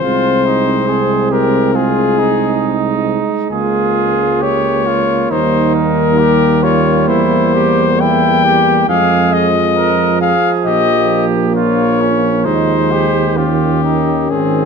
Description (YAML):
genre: classical, brass quintet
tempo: 67 BPM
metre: 4/4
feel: uneven beats, rubato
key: Ab major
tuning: A4 = 443 Hz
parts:
  - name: warm trumpet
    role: melody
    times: 0.0-14.7 s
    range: F4 to G5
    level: -16 LUFS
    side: left 8 dB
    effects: none
  - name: warm trumpet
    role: second line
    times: 0.0-14.7 s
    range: C4 to Bb4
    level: -18 LUFS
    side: right 9 dB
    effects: none
  - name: clear trombone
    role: accompaniment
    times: 0.0-14.7 s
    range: Eb3 to Ab3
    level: -20 LUFS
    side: right 5 dB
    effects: none
  - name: warm French horn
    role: accompaniment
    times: 0.0-14.7 s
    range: Ab3 to Db4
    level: -19 LUFS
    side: left 3 dB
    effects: none
  - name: warm tuba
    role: bass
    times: 0.0-14.7 s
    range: Ab1 to F2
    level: -18 LUFS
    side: right 6 dB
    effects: none
room: moderate concert hall reverb, RT60 2.3 s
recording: close, detailed microphones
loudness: -11 LUFS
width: side -6 dB against mid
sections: 0.0-14.7 A section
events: none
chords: 0.0 Ab/C; 3.5 Bbm7/Db; 5.3 Eb; 7.1 C7/E; 8.9 Fm; 10.7 Bbm; 12.5 Ab/Eb; 13.4 Eb7